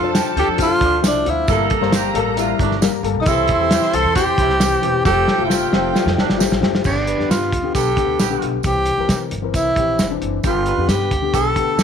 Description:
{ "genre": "uptempo 1960s-style soul", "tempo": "134 BPM", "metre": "4/4", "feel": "straight", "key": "unclear", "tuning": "A4 = 441 Hz", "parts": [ { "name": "breathy tenor saxophone", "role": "melody", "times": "0.0-11.8 s", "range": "D4 to A4", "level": "-19 LUFS", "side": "right 1 dB", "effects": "none" }, { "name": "glockenspiel with soft plastic mallets", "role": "second line", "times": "0.0-6.2 s", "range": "D6 to A6", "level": "-31 LUFS", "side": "left 10 dB", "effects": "none" }, { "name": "mellow saxophone section", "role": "second line", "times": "0.0-11.8 s", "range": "A2 to B4", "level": "-25 LUFS", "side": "right 14 dB", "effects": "none" }, { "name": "warm studio violin section", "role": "second line", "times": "0.0-6.6 s", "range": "Bb3 to C6", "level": "-26 LUFS", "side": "right 1 dB", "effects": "slapback echo" }, { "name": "dark upright piano", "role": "accompaniment", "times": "0.0-11.8 s", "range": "D3 to C5", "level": "-22 LUFS", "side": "left 13 dB", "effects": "none" }, { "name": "upright bass", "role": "bass", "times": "0.0-11.8 s", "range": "E1 to C3", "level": "-24 LUFS", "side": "right 1 dB", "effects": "tube saturation" }, { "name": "warm soul drum kit", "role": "drums", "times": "0.1-11.8 s", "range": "crash cymbal, hi-hat, kick drum, snare drum", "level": "-21 LUFS", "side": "right 1 dB", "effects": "none" }, { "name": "tambourine", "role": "percussion", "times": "0.2-11.8 s", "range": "none", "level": "-31 LUFS", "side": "right 17 dB", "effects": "none" } ], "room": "light reverb, studio reverb", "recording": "1960s-style stereo with parts hard left and right", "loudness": "-15 LUFS", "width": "side -7 dB against mid", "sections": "0.0-6.8 A section; 6.8-11.8 B section", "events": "drum fill 5.1-6.8", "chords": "0.0 Dm; 1.5 Gmadd9; 3.3 C; 5.1 Fadd9; 6.8 G; 8.6 C; 10.4 G", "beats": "0.15 0.59 1.04 | 1.48 1.93 2.38 2.82 | 3.27 3.72 4.16 4.61 | 5.06 5.50 5.95 6.40 | 6.85 7.29 7.74 8.19 | 8.64 9.09 9.54 9.99 | 10.44 10.89 11.34 11.79" }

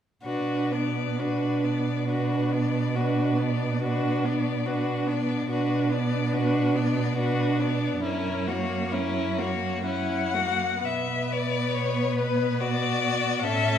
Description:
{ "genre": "classical, slow romantic movement for string quartet", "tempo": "59-72 BPM", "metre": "3/4", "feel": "rubato", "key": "B minor", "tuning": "A4 = 439 Hz", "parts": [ { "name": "warm violin", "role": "melody", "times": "0.2-13.8 s", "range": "A#4 to F#5", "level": "-30 LUFS", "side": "left 7 dB", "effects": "none" }, { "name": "rich violin", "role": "second line", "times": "0.2-13.8 s", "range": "D4 to B4", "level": "-30 LUFS", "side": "left 2 dB", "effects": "none" }, { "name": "warm viola", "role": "accompaniment", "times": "0.2-13.8 s", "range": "A#3 to D4", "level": "-29 LUFS", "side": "right 2 dB", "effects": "none" }, { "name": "warm cello", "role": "bass", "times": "0.2-13.8 s", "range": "F#2 to B2", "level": "-29 LUFS", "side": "right 3 dB", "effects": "none" } ], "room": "wet recital hall reverb, RT60 1.4 s", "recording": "heard from further back in the room", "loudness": "-24 LUFS", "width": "side -9 dB against mid", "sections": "0.2-10.8 A section; 10.8-13.8 B section", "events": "none", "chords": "0.2 Bm; 8.0 F#7; 10.8 Bm", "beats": "| 0.24 1.18 2.08 | 2.95 3.82 4.67 | 5.50 6.35 7.19 | 8.04 8.93 9.86 | 10.85 11.74 12.60 | 13.45" }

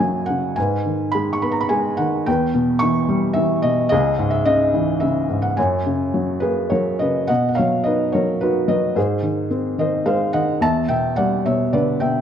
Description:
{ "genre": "classical, lyrical solo piano", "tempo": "108 BPM", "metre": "3/4", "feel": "rubato", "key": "unclear", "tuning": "A4 = 436 Hz", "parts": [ { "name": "felt-muted upright piano", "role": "solo", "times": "0.0-12.2 s", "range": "C#2 to C#6", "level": "-17 LUFS", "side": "equal", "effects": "none" } ], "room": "light reverb", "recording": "dark, warm production", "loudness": "-17 LUFS", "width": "side -8 dB against mid", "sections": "0.0-7.3 A section; 7.3-12.2 B section", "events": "none", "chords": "0.0 F#; 0.6 G#m; 2.3 Em; 3.9 C#madd9; 5.6 F#add9; 7.3 B; 9.0 G#; 10.6 Em7", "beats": "| 0.57 1.14 1.71 | 2.27 2.82 3.37 | 3.91 4.46 5.02 | 5.58 6.13 6.71 | 7.29 7.86 8.42 | 8.97 9.51 10.06 | 10.61 11.17 11.73" }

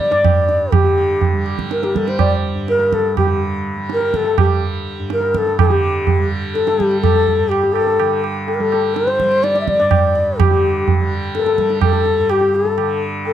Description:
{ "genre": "indian classical, Hindustani", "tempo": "124 BPM", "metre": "5/4", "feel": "straight", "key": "G raga kafi", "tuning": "A4 = 440 Hz", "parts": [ { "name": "breathy mellow bansuri", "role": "melody", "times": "0.0-13.3 s", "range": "G4 to E5", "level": "-16 LUFS", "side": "left 2 dB", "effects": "none" }, { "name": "steel pan", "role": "second line", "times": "0.0-13.1 s", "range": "G4 to D5", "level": "-26 LUFS", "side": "left 4 dB", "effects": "none" }, { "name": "tanpura", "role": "drone", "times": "0.0-13.3 s", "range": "G2 to G3", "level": "-23 LUFS", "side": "right 1 dB", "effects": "none" }, { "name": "tabla", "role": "percussion", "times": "0.0-13.3 s", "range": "none", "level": "-18 LUFS", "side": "right 5 dB", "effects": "none" } ], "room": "little or no reverb", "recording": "dry, close 1970s-style studio recording", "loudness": "-14 LUFS", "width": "side -10 dB against mid", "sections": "0.0-5.6 A section; 5.6-13.3 B section", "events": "none", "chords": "none", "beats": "0.24 | 0.73 1.22 1.70 2.19 2.68 | 3.16 3.65 4.13 4.62 5.10 | 5.58 6.07 6.55 7.03 7.51 | 7.99 8.47 8.95 9.43 9.91 | 10.39 10.87 11.35 11.82 12.30 | 12.78 13.25" }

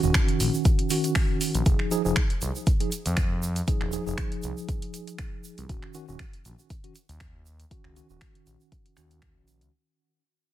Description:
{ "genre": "deep house", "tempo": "119 BPM", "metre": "4/4", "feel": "swing 54% on 16ths", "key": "unclear", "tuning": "A4 = 440 Hz", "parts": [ { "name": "mellow tine electric piano", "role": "stabs", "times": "0.0-9.7 s", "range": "Eb3 to Ab4", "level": "-29 LUFS", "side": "right 2 dB", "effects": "medium stereo tremolo, sidechain pumping, digital delay" }, { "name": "smooth gliding synth bass", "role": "bass", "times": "0.0-9.7 s", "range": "Eb1 to F2", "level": "-30 LUFS", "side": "equal", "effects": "sidechain pumping" }, { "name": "egg shaker", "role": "percussion", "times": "0.0-9.7 s", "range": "none", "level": "-38 LUFS", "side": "right 5 dB", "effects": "none" }, { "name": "deep house drum kit", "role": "drums", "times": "0.1-9.7 s", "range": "finger snaps, hi-hat", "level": "-32 LUFS", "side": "right 1 dB", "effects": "soft clipping on snare" }, { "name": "electronic kick drum", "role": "drums", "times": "0.1-9.3 s", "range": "none", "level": "-25 LUFS", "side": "equal", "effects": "none" } ], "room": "digital ambience", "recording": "dense, heavily limited modern master", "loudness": "-23 LUFS", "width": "side -13 dB against mid", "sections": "0.0-9.7 A section", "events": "fade-out 0.0-9.7", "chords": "0.0 Ebm7; 1.7 Fm7; 5.7 Ebm7", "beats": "0.15 0.65 1.16 | 1.66 2.16 2.67 3.17 | 3.68 4.18 4.68 5.19 | 5.69 6.20 6.70 7.21 | 7.71 8.21 8.72 9.22" }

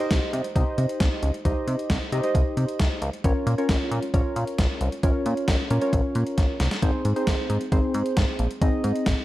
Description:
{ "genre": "synth-pop", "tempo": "134 BPM", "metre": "4/4", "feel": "straight", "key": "Bb dorian", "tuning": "A4 = 440 Hz", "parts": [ { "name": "muted felt-like synth keys", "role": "accompaniment", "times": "0.0-9.2 s", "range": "C4 to Eb5", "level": "-27 LUFS", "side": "equal", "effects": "chorus" }, { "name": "gated 80s digital drum machine", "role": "drums", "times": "0.0-9.2 s", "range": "hi-hat, kick drum, snare drum", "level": "-24 LUFS", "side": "equal", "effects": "gated reverb, gated reverb snare, overdrive" }, { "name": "chorused synth bass", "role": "bass", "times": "0.1-9.2 s", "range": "Ab1 to C3", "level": "-25 LUFS", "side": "equal", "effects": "none" } ], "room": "moderate recital hall reverb, RT60 1.5 s", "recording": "dark, warm production", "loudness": "-21 LUFS", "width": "side -15 dB against mid", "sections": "0.0-9.2 A section", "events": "drum fill 6.4-6.8", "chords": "0.0 Cm; 3.2 Bbm; 6.8 Ab", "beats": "0.11 0.56 1.00 | 1.45 1.90 2.35 2.79 | 3.24 3.69 4.14 4.59 | 5.03 5.48 5.93 6.38 | 6.83 7.27 7.72 8.17 | 8.62 9.06" }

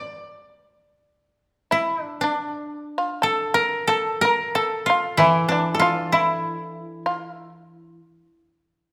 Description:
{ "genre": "japanese traditional, Japanese chamber music", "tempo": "57-65 BPM", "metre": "4/4", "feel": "rubato", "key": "D hirajoshi", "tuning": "A4 = 444 Hz", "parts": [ { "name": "koto", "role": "melody", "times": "0.0-8.4 s", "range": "D4 to D5", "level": "-25 LUFS", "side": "equal", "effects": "none" }, { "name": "shamisen", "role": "second line", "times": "1.7-7.5 s", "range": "D4 to Bb4", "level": "-27 LUFS", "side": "equal", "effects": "none" }, { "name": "koto", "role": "accompaniment", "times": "5.2-8.0 s", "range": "E3", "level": "-27 LUFS", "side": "equal", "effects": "none" } ], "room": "moderate recital hall reverb, RT60 1.4 s", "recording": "none", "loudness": "-22 LUFS", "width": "mono", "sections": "0.0-1.2 A section; 1.2-8.9 B section", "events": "none", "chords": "none", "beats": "0.21 | 1.23 2.23 3.24 4.23 | 5.19 6.13 7.06 7.99" }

